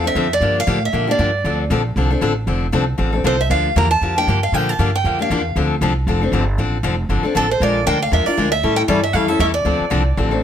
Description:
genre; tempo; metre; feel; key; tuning
acoustic string swing (jazz manouche); 234 BPM; 4/4; swing 57% on 8ths; D minor; A4 = 437 Hz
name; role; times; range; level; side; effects
picked steel-string acoustic guitar; melody; 0.0-10.4 s; A4 to Bb5; -19 LUFS; right 2 dB; none
picked steel-string acoustic guitar; accompaniment; 0.0-10.4 s; D3 to Bb4; -20 LUFS; left 4 dB; none
upright bass; bass; 0.0-10.4 s; F1 to Bb2; -20 LUFS; right 1 dB; none
room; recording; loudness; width
light reverb; none; -15 LUFS; side -9 dB against mid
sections
0.0-10.4 A section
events
none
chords
0.4 Gm7; 1.4 Dm7; 3.5 Gm7; 5.6 Dm7; 7.6 Bb7; 8.6 A7; 9.7 Dm7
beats
0.16 | 0.42 0.68 0.93 1.19 | 1.45 1.70 1.96 2.22 | 2.48 2.73 2.99 3.25 | 3.50 3.76 4.02 4.28 | 4.53 4.79 5.04 5.30 | 5.56 5.82 6.07 6.33 | 6.58 6.84 7.10 7.35 | 7.61 7.87 8.12 8.38 | 8.63 8.89 9.15 9.40 | 9.66 9.92 10.17 10.43

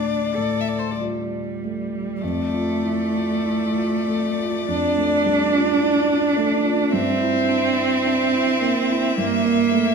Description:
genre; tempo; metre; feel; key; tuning
classical, slow romantic movement for piano trio; 46-56 BPM; 4/4; rubato; D minor; A4 = 443 Hz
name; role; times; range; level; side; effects
clear violin; melody; 0.0-9.9 s; C5 to E5; -27 LUFS; left 9 dB; none
rich cello; second line; 0.0-9.9 s; G3 to A4; -20 LUFS; right 3 dB; none
dark concert grand piano; accompaniment; 0.0-9.9 s; F2 to D5; -25 LUFS; equal; none
room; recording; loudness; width
wet recital hall reverb, RT60 1.6 s; none; -18 LUFS; side -5 dB against mid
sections
0.0-2.2 A section; 2.2-9.9 B section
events
none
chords
0.0 Dm; 2.2 Dm/F; 6.9 Edim/G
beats
0.99 | 2.23 3.43 4.68 5.79 | 6.93 8.06 9.18

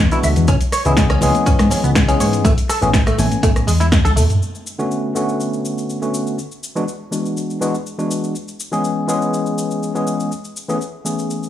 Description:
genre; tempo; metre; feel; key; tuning
nu-disco, nu disco; 122 BPM; 4/4; straight; B dorian; A4 = 440 Hz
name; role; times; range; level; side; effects
fat analog bass; bass; 0.0-4.3 s; A1 to G#2; -17 LUFS; equal; none
tine electric piano; accompaniment; 0.1-11.5 s; D3 to G#5; -20 LUFS; left 1 dB; overdrive, medium stereo tremolo, slapback echo
direct-recorded clean electric guitar; riff; 0.1-4.2 s; G#3 to E5; -22 LUFS; right 2 dB; ensemble chorus, slapback echo
house drum kit; drums; 0.1-11.5 s; hi-hat, rim click, shaker, snare drum, toms; -23 LUFS; equal; none
cabasa and congas; percussion; 0.1-4.4 s; none; -27 LUFS; left 3 dB; none
electronic kick drum; drums; 0.5-4.0 s; none; -17 LUFS; equal; none
room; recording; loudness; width
light reverb, digital ambience; small room ambience; -15 LUFS; side -11 dB against mid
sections
0.0-4.4 A section; 4.4-11.5 B section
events
drum fill 3.9-4.4; band accent 3.9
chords
0.5 C#m7; 2.4 Amaj7; 4.4 Bm7; 6.4 E7; 8.3 C#m7; 10.3 Amaj7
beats
| 0.48 0.97 1.47 1.96 | 2.45 2.94 3.43 3.92 | 4.42 4.91 5.40 5.89 | 6.38 6.87 7.37 7.86 | 8.35 8.84 9.33 9.82 | 10.32 10.81 11.30

